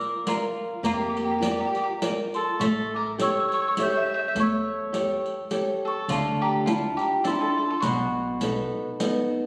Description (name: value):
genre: italian folk, Italian serenade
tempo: 103 BPM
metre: 3/4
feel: swing 55% on 8ths, rubato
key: unclear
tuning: A4 = 437 Hz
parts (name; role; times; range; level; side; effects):
- celesta; melody; 0.0-9.3 s; A5 to G6; -32 LUFS; equal; none
- mandolin; second line; 0.0-9.3 s; F4 to E5; -32 LUFS; equal; none
- nylon-string guitar; accompaniment; 0.0-9.5 s; B2 to D5; -30 LUFS; equal; none
- riq; percussion; 0.0-9.3 s; none; -35 LUFS; equal; none
- upright bass; bass; 0.8-8.6 s; A1 to F2; -36 LUFS; equal; none
room: wet recital hall reverb, RT60 1.7 s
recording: recorded on a phone in the room, studio reverb, compression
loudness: -26 LUFS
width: mono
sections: 0.0-9.5 A section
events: none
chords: 0.0 Bb; 2.6 A7; 6.1 Dmadd9; 7.8 B7